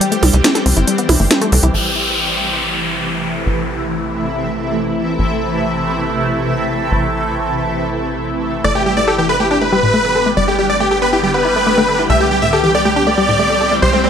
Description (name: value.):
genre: uplifting trance.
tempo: 139 BPM.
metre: 4/4.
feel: straight.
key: A minor.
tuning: A4 = 440 Hz.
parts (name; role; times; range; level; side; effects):
shimmering ambient pad; sustained chords; 0.0-14.1 s; C3 to G4; -18 LUFS; equal; chorus, built-in reverb, phaser.
wide unison pluck; arpeggios; 0.0-1.7, 8.6-14.1 s; A2 to A4; -18 LUFS; left 2 dB; digital delay.
techno drum kit; drums; 0.0-1.7 s; hi-hat, percussion blips, snare drum; -15 LUFS; right 1 dB; low-pass filter on hats, low-pass filter on perc, low-pass filter on snare, low-pass filter on room.
tight sequencer bass; bass; 0.2-14.1 s; G1 to C2; -22 LUFS; equal; tube saturation.
downlifter and riser; sound effects; 1.7-5.2, 13.3-14.1 s; none; -21 LUFS; left 1 dB; none.
big supersaw lead; melody; 8.6-14.1 s; C4 to E5; -14 LUFS; equal; digital delay.
room: moderate digital room reverb, RT60 1.0 s.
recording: none.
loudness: -13 LUFS.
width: side -8 dB against mid.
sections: 0.0-1.7 A section; 1.7-14.1 B section.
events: filter sweep on synth arpeggio sound 0.0-1.7.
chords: 0.0 C; 1.7 Am; 8.6 G; 12.1 C.